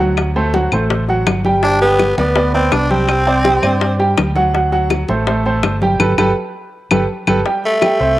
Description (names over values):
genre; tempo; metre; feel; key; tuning
latin, salsa; 165 BPM; 4/4; straight; G major; A4 = 440 Hz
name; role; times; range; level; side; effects
clear upright piano; accompaniment; 0.0-8.2 s; F#3 to G5; -16 LUFS; right 2 dB; cassette tape
fingered electric bass; bass; 0.0-8.2 s; G1 to G2; -19 LUFS; equal; none
bongos; percussion; 0.2-8.2 s; none; -22 LUFS; left 6 dB; none
claves; percussion; 0.2-8.0 s; none; -22 LUFS; left 4 dB; none
congas; percussion; 0.2-8.0 s; none; -22 LUFS; left 1 dB; none
growling tenor saxophone; melody; 1.6-4.0, 7.7-8.2 s; A3 to D4; -16 LUFS; equal; cassette tape
room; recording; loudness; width
moderate spring reverb, RT60 1.7 s, studio ambience; home recording on cassette; -12 LUFS; side -15 dB against mid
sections
0.0-7.5 A section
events
band accent 6.0-7.5; drum fill 6.5-7.5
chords
0.2 D7; 1.6 G; 3.1 Csus2; 4.5 D7; 6.0 Gadd9; 7.5 Am7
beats
| 0.17 0.54 0.90 1.27 | 1.63 1.99 2.36 2.72 | 3.09 3.45 3.81 4.18 | 4.54 4.91 5.27 5.63 | 6.00 6.36 6.73 7.09 | 7.46 7.82 8.18